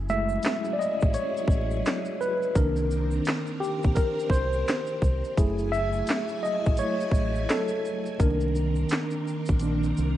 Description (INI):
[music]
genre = lo-fi hip hop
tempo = 85 BPM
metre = 4/4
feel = swing 58% on 16ths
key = unclear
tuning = A4 = 440 Hz
[part]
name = phased string machine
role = sustained chords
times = 0.0-10.2 s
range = Eb3 to Ab5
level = -34 LUFS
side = right 1 dB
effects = ensemble chorus, phaser
[part]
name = deep dub fingered electric bass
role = bass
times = 0.0-10.2 s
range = Gb1 to C2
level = -28 LUFS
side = equal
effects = none
[part]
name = tine electric piano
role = accompaniment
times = 0.1-10.2 s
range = Eb3 to Fb5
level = -27 LUFS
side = equal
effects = overdrive, fast stereo tremolo, cassette tape
[part]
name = drum and bass drum kit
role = drums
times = 0.1-10.2 s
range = handclaps, hi-hat, kick drum, shaker, snare drum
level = -26 LUFS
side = equal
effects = none
[part]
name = egg shaker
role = percussion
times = 0.1-10.2 s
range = none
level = -55 LUFS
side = right 6 dB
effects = none
[sound]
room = light reverb, digital ambience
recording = vinyl crackle, nothing above 10.6 kHz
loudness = -24 LUFS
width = side -13 dB against mid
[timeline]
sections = 0.0-10.2 A section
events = tine electric piano solo 0.0-10.2; drum fill 9.6-10.2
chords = 0.0 Gbm9; 2.6 Cm9; 5.4 Gbm9; 8.2 Cm9